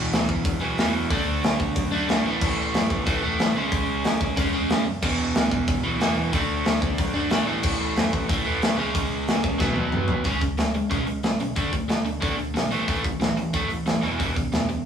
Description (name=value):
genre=punk rock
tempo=184 BPM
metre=4/4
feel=straight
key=unclear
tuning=A4 = 441 Hz
part: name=overdriven electric guitar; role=riff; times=0.0-14.8 s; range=E2 to D4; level=-24 LUFS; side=right 1 dB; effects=none
part: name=overdriven picked electric bass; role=bass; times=0.0-14.8 s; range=E1 to A2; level=-34 LUFS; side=left 1 dB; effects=none
part: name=tight metal drum kit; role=drums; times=0.1-14.8 s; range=crash cymbal, hi-hat, kick drum, snare drum, toms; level=-24 LUFS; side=equal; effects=none
room=light reverb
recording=rough rehearsal-room recording, warm saturation, studio reverb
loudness=-21 LUFS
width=side -8 dB against mid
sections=0.0-10.3 A section; 10.3-14.9 B section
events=drum fill 9.6-10.3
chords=0.0 E5; 1.1 D; 2.2 A5; 3.6 C#m; 5.0 E5; 6.3 D; 7.5 A5; 8.8 C#5; 9.6 B; 10.3 C#5; 11.6 D5; 12.7 A5; 14.0 E5